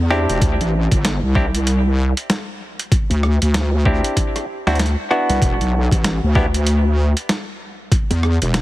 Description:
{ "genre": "glitch hop", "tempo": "96 BPM", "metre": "4/4", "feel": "swing 60% on 16ths", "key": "unclear", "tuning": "A4 = 440 Hz", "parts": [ { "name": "wobble bass", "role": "bass", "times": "0.0-8.6 s", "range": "E1 to E2", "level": "-16 LUFS", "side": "equal", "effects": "chorus" }, { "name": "bright clav", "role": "stabs", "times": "0.1-6.5 s", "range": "B3 to G4", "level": "-22 LUFS", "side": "equal", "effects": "vintage 12-bit sampler grit, sidechain pumping, digital delay" }, { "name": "boom bap sampler-style drum kit", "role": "drums", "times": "0.1-8.6 s", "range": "hi-hat, rim click, snare drum", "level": "-23 LUFS", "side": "equal", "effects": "overdrive" }, { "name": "electronic kick drum", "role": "drums", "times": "0.4-8.1 s", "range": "none", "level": "-17 LUFS", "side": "equal", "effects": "overdrive" } ], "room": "digital ambience", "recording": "heavily compressed radio sound, multiband compression, faint mains hum", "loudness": "-15 LUFS", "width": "side -16 dB against mid", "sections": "0.0-8.6 A section", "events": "none", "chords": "0.4 D9sus4; 5.4 E7(no3)", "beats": "| 0.42 1.04 1.67 2.29 | 2.92 3.54 4.17 4.79 | 5.42 6.04 6.67 7.29 | 7.92 8.54" }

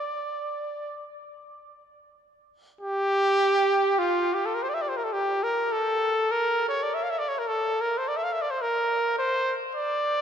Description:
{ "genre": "classical, free, expressive piece for unaccompanied trumpet", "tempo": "28-55 BPM", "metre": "4/4", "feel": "rubato", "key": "D minor", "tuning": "A4 = 440 Hz", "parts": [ { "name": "bright trumpet", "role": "solo", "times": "0.0-10.2 s", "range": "F4 to F5", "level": "-24 LUFS", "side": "equal", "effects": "none" } ], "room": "wet cathedral reverb, RT60 5.0 s", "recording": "dark, warm production", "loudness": "-23 LUFS", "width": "side -8 dB against mid", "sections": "0.0-2.8 A section; 2.8-10.2 B section", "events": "none", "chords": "none", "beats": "1.10 | 2.79 3.98 5.13 6.31 | 7.48 8.61 9.76" }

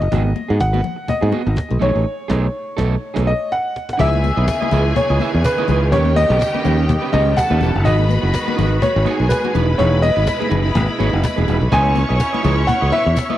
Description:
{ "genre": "disco", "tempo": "124 BPM", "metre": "4/4", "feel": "swing 56% on 16ths", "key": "C# minor", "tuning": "A4 = 440 Hz", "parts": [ { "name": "clear grand piano", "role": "melody", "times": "0.0-13.4 s", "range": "B4 to G#5", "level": "-21 LUFS", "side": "left 1 dB", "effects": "cassette tape" }, { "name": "electric guitar at the edge of break-up", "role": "accompaniment", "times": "0.0-13.4 s", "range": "A3 to E5", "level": "-25 LUFS", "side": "right 9 dB", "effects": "cassette tape" }, { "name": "modern bright fingered electric bass", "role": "bass", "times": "0.0-13.2 s", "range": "E1 to G#2", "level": "-17 LUFS", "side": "equal", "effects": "none" }, { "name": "cajon", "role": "drums", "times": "0.0-13.3 s", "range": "none", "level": "-22 LUFS", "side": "equal", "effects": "cassette tape" }, { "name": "congas", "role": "percussion", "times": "0.1-13.4 s", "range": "none", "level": "-26 LUFS", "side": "left 9 dB", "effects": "none" }, { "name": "clear studio string section", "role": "second line", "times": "4.0-13.4 s", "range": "G4 to C#6", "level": "-25 LUFS", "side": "left 2 dB", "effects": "cassette tape" }, { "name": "bright studio string section", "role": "sustained chords", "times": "4.0-13.4 s", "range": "B2 to F#4", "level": "-27 LUFS", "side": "right 1 dB", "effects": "cassette tape" }, { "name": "tambourine", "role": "percussion", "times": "4.0-13.3 s", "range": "none", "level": "-41 LUFS", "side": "left 13 dB", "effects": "none" } ], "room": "little or no reverb", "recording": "home recording on cassette", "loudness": "-15 LUFS", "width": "side -13 dB against mid", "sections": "0.0-4.0 A section; 4.0-13.4 B section", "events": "band accent 2.1-4.0; drum fill 3.5-4.0", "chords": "0.1 G#m7; 1.8 B13; 4.0 C#m9; 5.9 D#7alt; 7.9 G#m7; 9.5 Emaj7; 11.7 C#m9", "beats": "| 0.12 0.60 1.08 1.57 | 2.05 2.54 3.02 3.51 | 3.99 4.47 4.96 5.44 | 5.92 6.41 6.89 7.37 | 7.86 8.34 8.82 9.30 | 9.79 10.27 10.75 11.24 | 11.72 12.20 12.69 13.17" }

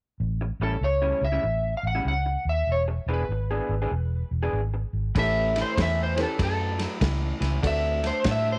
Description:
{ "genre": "electric blues shuffle", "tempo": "97 BPM", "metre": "4/4", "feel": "swing 64% on 8ths", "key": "A mixolydian", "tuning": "A4 = 440 Hz", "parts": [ { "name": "vintage muted fingered electric bass", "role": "bass", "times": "0.2-8.6 s", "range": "E1 to A2", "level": "-29 LUFS", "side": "equal", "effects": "none" }, { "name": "electric guitar through a small old amp", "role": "riff", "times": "0.4-8.6 s", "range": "A2 to G#4", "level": "-34 LUFS", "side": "equal", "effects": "none" }, { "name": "electric slide guitar", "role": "melody", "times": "0.6-8.6 s", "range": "A4 to F#5", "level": "-29 LUFS", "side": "equal", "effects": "slapback echo" }, { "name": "clear upright piano", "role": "accompaniment", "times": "5.2-8.0 s", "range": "A3 to B4", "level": "-35 LUFS", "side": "equal", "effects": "none" }, { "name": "warm soul drum kit", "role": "drums", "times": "5.2-8.4 s", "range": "kick drum, ride cymbal, snare drum", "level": "-32 LUFS", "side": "equal", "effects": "none" } ], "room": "studio ambience", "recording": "none", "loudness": "-26 LUFS", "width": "mono", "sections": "0.2-5.2 A section; 5.2-8.6 B section", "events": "electric slide guitar solo 5.2-8.6", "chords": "0.2 A7; 2.7 E7; 5.2 A7; 7.6 D7", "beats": "| 0.19 0.82 1.44 2.06 | 2.68 3.30 3.92 4.54 | 5.16 5.78 6.40 7.02 | 7.64 8.26" }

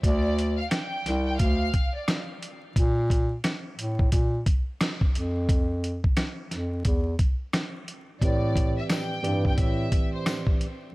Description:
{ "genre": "hip hop, boom-bap hip-hop", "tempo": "88 BPM", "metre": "4/4", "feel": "swing 62% on 16ths", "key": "A minor", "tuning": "A4 = 440 Hz", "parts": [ { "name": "warm studio violin section", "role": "melody", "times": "0.0-2.1, 8.2-10.3 s", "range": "C5 to G5", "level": "-33 LUFS", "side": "equal", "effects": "high-pass filter, low-pass filter, diffuse ambient delay" }, { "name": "mellow bass clarinet", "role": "bass", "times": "0.0-9.9 s", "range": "C2 to Bb2", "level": "-26 LUFS", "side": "equal", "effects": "none" }, { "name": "dusty soul sampler-style drum kit", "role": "drums", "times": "0.0-10.8 s", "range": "hi-hat, kick drum, rim click, snare drum", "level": "-25 LUFS", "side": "equal", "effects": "none" }, { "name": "mellow tine electric piano", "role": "accompaniment", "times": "8.2-10.7 s", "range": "A2 to D5", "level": "-30 LUFS", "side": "right 2 dB", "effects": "cassette tape, high-pass filter, low-pass filter" }, { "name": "tambourine", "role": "percussion", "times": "8.9-10.5 s", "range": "none", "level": "-47 LUFS", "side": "left 4 dB", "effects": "none" } ], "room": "studio reverb", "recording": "vinyl crackle", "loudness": "-23 LUFS", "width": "side -21 dB against mid", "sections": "0.0-10.9 A section", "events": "none", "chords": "0.0 Csus24; 2.8 N.C.; 8.2 Am11", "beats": "| 0.04 0.72 1.40 2.08 | 2.76 3.44 4.13 4.81 | 5.49 6.17 6.85 7.54 | 8.22 8.90 9.58 10.26" }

